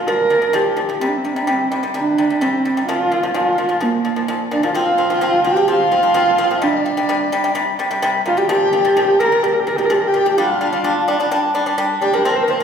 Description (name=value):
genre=mongolian traditional, Mongolian folk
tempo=128 BPM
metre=4/4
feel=straight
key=Bb gong mode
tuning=A4 = 441 Hz
part: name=dark horsehead fiddle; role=melody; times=0.0-12.6 s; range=Bb3 to C5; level=-17 LUFS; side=right 2 dB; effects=none
part: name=pipa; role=arpeggios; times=0.0-12.6 s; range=Bb2 to D4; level=-20 LUFS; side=left 2 dB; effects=none
part: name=reedy large dizi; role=second line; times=4.5-12.2 s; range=D5 to Bb5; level=-22 LUFS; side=left 2 dB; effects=none
room=wet recital hall reverb, RT60 1.5 s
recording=heard from further back in the room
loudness=-14 LUFS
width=side -7 dB against mid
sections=0.0-4.7 A section; 4.7-12.6 B section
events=none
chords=0.0 Bb5; 1.0 C5; 2.9 Bb5; 4.7 F5; 6.6 C5; 8.5 Bb5; 10.4 G5